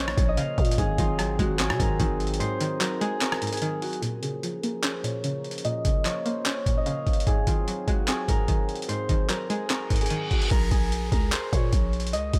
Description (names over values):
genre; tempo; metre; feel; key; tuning
hip hop, trap; 148 BPM; 4/4; half-time; Bb minor; A4 = 440 Hz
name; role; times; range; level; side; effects
concert harp; melody; 0.0-12.4 s; F4 to F5; -32 LUFS; equal; low-pass filter, digital delay
string-like resonator pluck; accompaniment; 0.0-10.5 s; Ab2 to Db4; -34 LUFS; equal; chorus, low-pass filter
warm analog pad; sustained chords; 0.0-10.5 s; F3 to Bb4; -40 LUFS; equal; chorus, low-pass filter
growling 808-style bass; bass; 0.0-2.4, 10.5-12.4 s; Ab1 to C3; -30 LUFS; equal; none
boom bap sampler-style drum kit; drums; 0.1-12.4 s; crash cymbal, handclaps, hi-hat, kick drum, rim click; -28 LUFS; equal; overdrive
reverse cymbal and downlifter; sound effects; 9.9-12.4 s; none; -39 LUFS; equal; none
room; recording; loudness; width
digital ambience; none; -26 LUFS; mono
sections
0.0-4.0 A section; 4.0-10.5 B section; 10.5-12.4 C section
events
kick muted 2.4-4.0; filter sweep 4.0-10.5; reverse cymbal 9.9-10.5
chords
0.0 Bbm; 0.8 Ab7; 4.0 Bbm; 7.3 Ab7; 10.5 Bbm